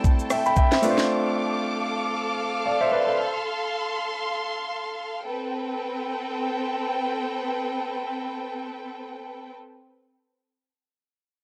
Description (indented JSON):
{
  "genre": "amapiano",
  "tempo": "free time",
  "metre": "none",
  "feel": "none",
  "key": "A minor",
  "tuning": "A4 = 438 Hz",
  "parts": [
    { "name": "warm concert grand piano", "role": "accompaniment", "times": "0.0-3.3 s", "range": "A3 to B5", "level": "-26 LUFS", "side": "equal", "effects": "none" },
    { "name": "warm studio string section", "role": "sustained chords", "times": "0.0-9.5 s", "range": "C4 to D6", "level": "-30 LUFS", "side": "equal", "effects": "sidechain pumping" },
    { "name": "afro-pop drum kit", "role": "drums", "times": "0.0-1.1 s", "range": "hi-hat, kick drum, rim click, shaker, snare drum", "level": "-24 LUFS", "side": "equal", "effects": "none" }
  ],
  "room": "little or no reverb",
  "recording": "dry, gritty hardware recording, cassette tape",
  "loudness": "-26 LUFS",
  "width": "mono",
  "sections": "0.0-5.3 A section; 5.3-9.4 B section",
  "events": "drop 0.0-5.3",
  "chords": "0.0 Am9; 0.8 F6; 5.3 Am9",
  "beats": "free time"
}